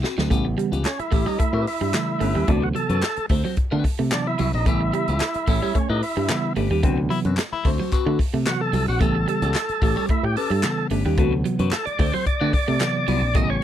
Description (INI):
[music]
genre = funk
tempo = 110 BPM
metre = 4/4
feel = straight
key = unclear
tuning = A4 = 440 Hz
[part]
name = clean electric guitar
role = accompaniment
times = 0.0-13.6 s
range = C4 to C#5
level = -29 LUFS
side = left 9 dB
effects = phaser
[part]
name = electric guitar at the edge of break-up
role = riff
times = 0.0-13.5 s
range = F#3 to A3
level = -28 LUFS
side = right 9 dB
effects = spring reverb
[part]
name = fingered electric bass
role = bass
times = 0.0-13.6 s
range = G1 to D3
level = -23 LUFS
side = left 1 dB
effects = none
[part]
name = swinging big-band drum kit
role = drums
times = 0.0-13.5 s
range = handclaps, hi-hat, kick drum, snare drum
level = -25 LUFS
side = equal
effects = none
[part]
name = mellow tine electric piano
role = stabs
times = 0.3-13.6 s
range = B2 to B3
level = -26 LUFS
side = right 1 dB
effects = fast stereo tremolo
[part]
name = group handclap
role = percussion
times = 0.8-12.9 s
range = none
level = -34 LUFS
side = left 6 dB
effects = none
[part]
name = percussive tonewheel organ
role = melody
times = 0.9-13.6 s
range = C#4 to D#5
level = -25 LUFS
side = right 1 dB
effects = overdrive, fast rotary speaker
[part]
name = bright baritone saxophone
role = second line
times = 7.1-7.7 s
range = E4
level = -26 LUFS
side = left 8 dB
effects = none
[sound]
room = little or no reverb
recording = dry, close 1970s-style studio recording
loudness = -19 LUFS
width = side -11 dB against mid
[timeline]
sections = 0.3-13.6 A section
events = drum fill 0.0-0.3; tonewheel organ solo 0.3-13.6; band accent 6.8-9.0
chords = 0.3 A9; 2.5 D13; 4.7 A9; 6.8 D13; 9.0 A9; 11.2 D13